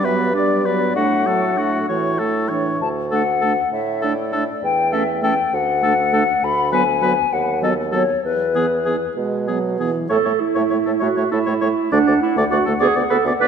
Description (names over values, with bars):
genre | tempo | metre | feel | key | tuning
quick classical-period movement for wind quintet | 66 BPM (dotted quarters) | 6/8 | straight | D major, A major from 6.4 s | A4 = 440 Hz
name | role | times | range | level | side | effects
mellow hollow silver concert flute | melody | 0.0-13.5 s | B4 to B5 | -21 LUFS | left 6 dB | none
warm oboe | second line | 0.0-13.5 s | F#4 to D5 | -24 LUFS | left 2 dB | none
dark clarinet | accompaniment | 0.0-13.5 s | B3 to B4 | -22 LUFS | right 7 dB | none
warm French horn | accompaniment | 0.0-13.5 s | E3 to B3 | -25 LUFS | right 1 dB | none
mellow bassoon | bass | 0.0-13.5 s | D2 to B2 | -24 LUFS | right 3 dB | none
room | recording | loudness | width
wet concert hall reverb, RT60 2.3 s | nothing above 10.8 kHz | -16 LUFS | side -7 dB against mid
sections
0.0-10.1 A section; 10.1-13.5 B section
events
none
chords
0.0 Gmaj7; 1.0 D/A; 1.9 A; 2.8 D; 4.6 A/E; 5.5 D; 6.4 Bm/D; 7.3 B7/D#; 8.2 E; 10.1 A; 11.9 D; 12.8 Bm/D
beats
0.04 | 0.96 1.89 | 2.81 3.73 | 4.63 5.53 | 6.42 7.32 | 8.24 9.17 | 10.10 11.02 | 11.93 12.82